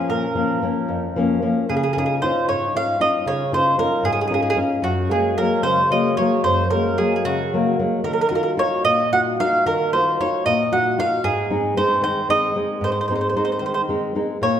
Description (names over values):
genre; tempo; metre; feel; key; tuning
italian folk, Italian serenade; 75 BPM (dotted quarters); 6/8; rubato; Db major; A4 = 436 Hz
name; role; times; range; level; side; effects
nylon-string guitar; accompaniment; 0.0-14.6 s; F2 to Gb4; -21 LUFS; left 2 dB; none
mandolin; melody; 0.1-14.6 s; Gb4 to Gb5; -20 LUFS; right 2 dB; none
room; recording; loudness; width
wet recital hall reverb, RT60 1.6 s; none; -18 LUFS; side -9 dB against mid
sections
0.0-1.7 A section; 1.7-14.6 B section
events
none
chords
0.0 Bbm; 1.7 Dbadd9; 4.8 Gbadd9; 8.0 Ebmadd9; 11.2 Ab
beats
| 0.09 0.89 | 1.70 2.49 | 3.28 4.06 | 4.84 5.63 | 6.43 7.23 | 8.03 8.84 | 9.64 10.44 | 11.23 12.02 | 12.81 13.61 | 14.42